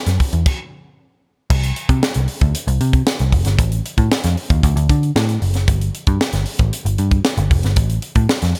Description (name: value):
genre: polished 1980s jazz-funk pop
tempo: 115 BPM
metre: 4/4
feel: straight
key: unclear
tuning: A4 = 440 Hz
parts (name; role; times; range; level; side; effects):
- vintage muted picked electric bass; bass; 0.1-8.5 s; F1 to D3; -19 LUFS; equal; none
- crisp fusion drum kit; drums; 0.1-8.6 s; crash cymbal, hi-hat, kick drum, snare drum; -20 LUFS; equal; none
room: little or no reverb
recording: none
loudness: -17 LUFS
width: mono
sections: 0.0-1.5 A section; 1.5-8.6 B section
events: stop 0.5-1.5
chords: none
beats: 0.46 0.98 | 1.50 2.03 2.55 3.07 | 3.59 4.11 4.63 5.16 | 5.68 6.20 6.72 7.25 | 7.77 8.29